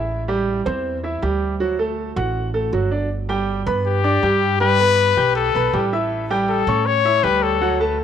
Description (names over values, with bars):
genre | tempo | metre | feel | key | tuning
latin | 160 BPM | 4/4 | straight | G major | A4 = 440 Hz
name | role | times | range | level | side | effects
bright grand piano | accompaniment | 0.0-8.0 s | F#3 to G6 | -21 LUFS | right 3 dB | none
upright bass | bass | 0.0-8.0 s | G1 to A2 | -24 LUFS | right 2 dB | none
clear trumpet | melody | 3.9-7.8 s | G4 to C#5 | -18 LUFS | left 9 dB | tape echo
room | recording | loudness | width
light reverb | none | -17 LUFS | side -8 dB against mid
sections
0.0-3.1 A section; 3.1-8.0 A section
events
none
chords
0.1 Am7; 1.6 D; 3.1 G; 4.6 Em; 6.1 A7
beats
| 0.09 0.47 0.84 1.22 | 1.60 1.97 2.35 2.73 | 3.10 3.48 3.85 4.23 | 4.61 4.98 5.36 5.73 | 6.11 6.48 6.86 7.24 | 7.61 7.99